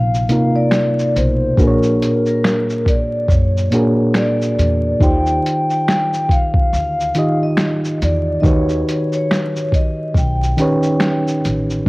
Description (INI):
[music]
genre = lo-fi hip hop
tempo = 70 BPM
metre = 4/4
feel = swing 58% on 16ths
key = unclear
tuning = A4 = 440 Hz
[part]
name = vibraphone with soft mallets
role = melody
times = 0.0-11.4 s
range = Bb4 to G5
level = -20 LUFS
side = left 1 dB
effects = none
[part]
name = reed electric piano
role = accompaniment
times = 0.0-11.9 s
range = Bb2 to Eb5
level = -18 LUFS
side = equal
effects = cassette tape
[part]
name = upright bass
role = bass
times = 0.0-11.9 s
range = A1 to F#2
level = -19 LUFS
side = equal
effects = none
[part]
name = lo-fi sampler-style drum kit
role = drums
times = 0.1-11.9 s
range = finger snaps, hi-hat, kick drum, shaker, snare drum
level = -18 LUFS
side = equal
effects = cassette tape
[sound]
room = light reverb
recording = home recording on cassette, vinyl crackle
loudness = -14 LUFS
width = side -22 dB against mid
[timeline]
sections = 0.0-11.9 A section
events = none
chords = 0.0 Cm11; 1.6 Bb7alt; 5.0 Eb6; 8.4 Eb7alt